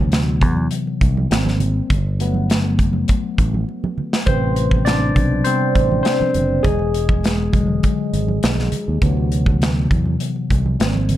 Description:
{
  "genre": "lush 1970s-style soul",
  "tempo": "101 BPM",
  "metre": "4/4",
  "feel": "straight",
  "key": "unclear",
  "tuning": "A4 = 439 Hz",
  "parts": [
    { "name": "barky tine electric piano", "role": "accompaniment", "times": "0.0-11.2 s", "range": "C3 to D5", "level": "-20 LUFS", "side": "left 1 dB", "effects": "overdrive, phaser" },
    { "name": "fingered electric bass", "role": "bass", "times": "0.0-11.2 s", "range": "E1 to E2", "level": "-20 LUFS", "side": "equal", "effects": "none" },
    { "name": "modern studio drum kit", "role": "drums", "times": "0.1-11.2 s", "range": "hi-hat, kick drum, snare drum", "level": "-19 LUFS", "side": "equal", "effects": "none" },
    { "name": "congas", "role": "percussion", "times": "0.1-11.2 s", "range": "none", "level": "-27 LUFS", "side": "right 4 dB", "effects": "none" }
  ],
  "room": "small room ambience",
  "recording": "dark, warm production",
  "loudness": "-16 LUFS",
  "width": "side -13 dB against mid",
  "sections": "0.0-11.2 A section",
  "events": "tine electric piano solo 0.0-11.2; drum fill 3.7-4.3",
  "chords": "0.0 D13; 1.3 G#maj7; 1.9 Gmaj7; 4.3 Am7; 6.6 E9; 9.0 D13"
}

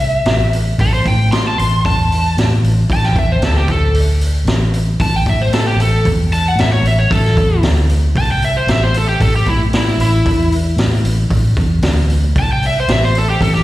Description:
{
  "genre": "blues rock power trio and southern rock",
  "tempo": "114 BPM",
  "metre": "4/4",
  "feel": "straight",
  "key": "unclear",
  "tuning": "A4 = 440 Hz",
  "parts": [
    { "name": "overdriven slide guitar", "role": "melody", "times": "0.0-13.6 s", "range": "E4 to C6", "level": "-18 LUFS", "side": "equal", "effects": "slapback echo, analog delay" },
    { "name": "vintage muted fingered electric bass", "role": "bass", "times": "0.0-13.6 s", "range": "A1 to A2", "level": "-14 LUFS", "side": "equal", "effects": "none" },
    { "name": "raw garage drum kit", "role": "drums", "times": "0.0-13.6 s", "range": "hi-hat, kick drum, snare drum", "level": "-18 LUFS", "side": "equal", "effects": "none" }
  ],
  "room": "studio reverb",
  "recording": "live gig heard through the venue's PA, recital hall reverb",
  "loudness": "-12 LUFS",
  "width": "side -16 dB against mid",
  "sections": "0.0-13.6 A section",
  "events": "electric slide guitar solo 0.0-13.6",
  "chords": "0.0 A5"
}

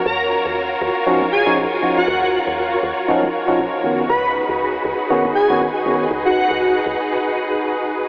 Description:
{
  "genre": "deep house",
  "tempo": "119 BPM",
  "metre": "4/4",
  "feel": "swing 58% on 16ths",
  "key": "unclear",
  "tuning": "A4 = 440 Hz",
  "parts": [
    { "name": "soft string machine", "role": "sustained chords", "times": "0.0-8.1 s", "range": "D#4 to C#5", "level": "-23 LUFS", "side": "equal", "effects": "ensemble chorus" },
    { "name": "airy dreamy lead", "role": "melody", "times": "0.1-6.8 s", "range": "F#4 to B4", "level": "-23 LUFS", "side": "equal", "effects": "chorus, cassette tape, diffuse ambient delay" },
    { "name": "woody FM bass", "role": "bass", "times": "0.1-7.0 s", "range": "D#1 to D#2", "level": "-30 LUFS", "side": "equal", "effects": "none" },
    { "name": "tine electric piano", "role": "stabs", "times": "1.1-6.0 s", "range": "D#3 to F#4", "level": "-24 LUFS", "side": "equal", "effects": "lush chorus, diffuse ambient delay" }
  ],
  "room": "wet huge ambient reverb, RT60 5.7 s",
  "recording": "dreamy mix soaked in reverb, telephone sound",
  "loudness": "-18 LUFS",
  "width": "mono",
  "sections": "0.0-8.1 A section",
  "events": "break 7.1-8.1",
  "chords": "0.0 D#m9; 3.8 C#9sus4"
}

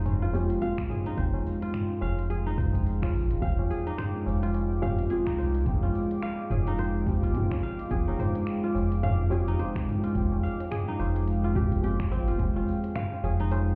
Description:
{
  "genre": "organic downtempo",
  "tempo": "107 BPM",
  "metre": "4/4",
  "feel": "swing 59% on 16ths",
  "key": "F dorian",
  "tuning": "A4 = 437 Hz",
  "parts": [
    { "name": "felt-muted upright piano", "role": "accompaniment", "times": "0.0-13.8 s", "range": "F3 to G5", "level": "-36 LUFS", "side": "equal", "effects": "sidechain pumping, tape echo" },
    { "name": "warm analog pad", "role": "sustained chords", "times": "0.0-13.8 s", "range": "Ab3 to D6", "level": "-37 LUFS", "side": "equal", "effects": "chorus, sidechain pumping" },
    { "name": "kora", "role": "arpeggios", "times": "0.0-13.8 s", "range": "C4 to F5", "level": "-37 LUFS", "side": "equal", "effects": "low-pass filter, tape echo" },
    { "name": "round analog bass", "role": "bass", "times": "0.0-13.8 s", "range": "Eb1 to C2", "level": "-30 LUFS", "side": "equal", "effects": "none" },
    { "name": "organic electronic drum kit", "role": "drums", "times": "0.1-13.8 s", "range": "finger snaps, hi-hat, shaker, toms", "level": "-36 LUFS", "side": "equal", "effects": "none" },
    { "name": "tabla", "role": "percussion", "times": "0.1-13.6 s", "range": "none", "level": "-40 LUFS", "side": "equal", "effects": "none" },
    { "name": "electronic kick drum", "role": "drums", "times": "0.8-12.5 s", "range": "none", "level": "-34 LUFS", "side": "equal", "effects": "none" }
  ],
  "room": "moderate echo chamber reverb, RT60 2.1 s",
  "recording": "heard muffled through a wall, club reverb, EQ",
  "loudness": "-28 LUFS",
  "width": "mono",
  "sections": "0.0-13.8 A section",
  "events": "none",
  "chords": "0.0 Fmadd9"
}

